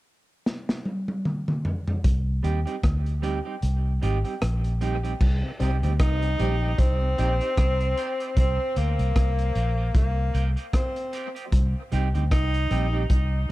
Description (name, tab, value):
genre	dub reggae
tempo	76 BPM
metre	4/4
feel	swing 57% on 16ths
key	C minor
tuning	A4 = 439 Hz
part	crunchy breakbeat drum kit	drums	0.5-13.3 s	crash cymbal, hi-hat, kick drum, rim click, snare drum, toms	-24 LUFS	equal	none
part	vintage muted fingered electric bass	bass	2.0-13.5 s	Ab1 to Eb2	-24 LUFS	equal	none
part	clean electric guitar	accompaniment	2.4-13.5 s	G3 to G4	-33 LUFS	right 5 dB	high-pass filter, dub echo
part	tonewheel organ	accompaniment	5.4-8.3 s	C3 to Eb4	-39 LUFS	left 3 dB	none
part	clear tenor saxophone	melody	6.0-13.1 s	Bb3 to Eb4	-29 LUFS	equal	dub echo
room	studio ambience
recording	dark, warm production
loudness	-22 LUFS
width	side -18 dB against mid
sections	0.0-2.0 A section; 2.0-5.2 B section; 5.2-13.5 C section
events	drum fill 0.5-2.0; kick muted 3.6-5.2; filter sweep 5.2-11.5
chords	0.0 N.C.; 2.0 Cm